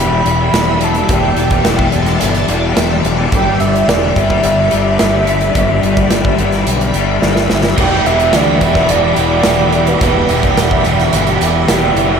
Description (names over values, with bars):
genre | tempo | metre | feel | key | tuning
rock, shoegaze and dream pop | 108 BPM | 4/4 | straight | E minor | A4 = 436 Hz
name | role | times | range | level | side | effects
mellow horn-like synth lead | melody | 0.0-10.5 s | B4 to B5 | -18 LUFS | right 3 dB | chorus, diffuse ambient delay
string machine, full ensemble | sustained chords | 0.0-12.2 s | G4 to B5 | -19 LUFS | right 1 dB | phaser, ensemble chorus
fuzz guitar | riff | 0.0-12.2 s | E2 to G3 | -17 LUFS | left 8 dB | distortion, ensemble chorus
fuzz fingered electric bass | bass | 0.0-12.2 s | E1 to D2 | -18 LUFS | equal | overdrive
big rock drum kit | drums | 0.3-12.1 s | crash cymbal, hi-hat, kick drum, snare drum | -17 LUFS | right 1 dB | none
overdriven electric guitar | riff | 7.8-12.2 s | E2 to G4 | -16 LUFS | right 9 dB | reverse reverb
tambourine | percussion | 7.8-11.8 s | none | -32 LUFS | left 11 dB | none
room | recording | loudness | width
moderate plate reverb, RT60 2.0 s | dreamy mix soaked in reverb | -10 LUFS | side -6 dB against mid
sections
0.0-12.2 A section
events
drum fill 7.2-7.8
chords
0.0 Em7; 3.3 G6; 7.8 Em7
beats
0.53 | 1.09 1.65 2.21 2.77 | 3.32 3.88 4.44 5.00 | 5.56 6.12 6.67 7.23 | 7.79 8.35 8.90 9.46 | 10.02 10.57 11.13 11.69